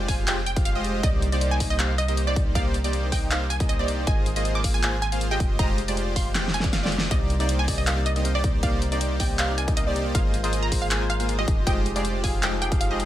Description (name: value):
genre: future bass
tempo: 158 BPM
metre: 4/4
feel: half-time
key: C minor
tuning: A4 = 441 Hz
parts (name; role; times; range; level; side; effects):
- wide unison pluck; arpeggios; 0.0-13.1 s; D5 to Ab5; -35 LUFS; right 1 dB; sidechain pumping
- soft supersaw; riff; 0.0-13.1 s; Ab3 to Ab5; -29 LUFS; equal; sidechain pumping
- long sustained 808-style bass; bass; 0.0-13.1 s; F1 to C2; -27 LUFS; equal; sidechain pumping
- wide unison pluck; melody; 0.1-13.0 s; D5 to D6; -32 LUFS; right 2 dB; sidechain pumping, dub echo
- big-room dance drum kit; drums; 0.1-13.1 s; handclaps, hi-hat, snare drum; -29 LUFS; left 1 dB; none
- electronic kick drum; drums; 0.1-12.8 s; none; -25 LUFS; equal; none
- barky tine electric piano; accompaniment; 7.1-13.1 s; C3 to F5; -32 LUFS; left 3 dB; sidechain pumping
room: light reverb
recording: none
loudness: -21 LUFS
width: side -13 dB against mid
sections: 0.0-13.1 A section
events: drum fill 6.3-7.1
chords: 0.0 Fm9; 1.0 Cm9; 4.1 Ab69; 5.4 Fm9; 7.1 Cm9; 10.1 Ab69; 11.5 Fm9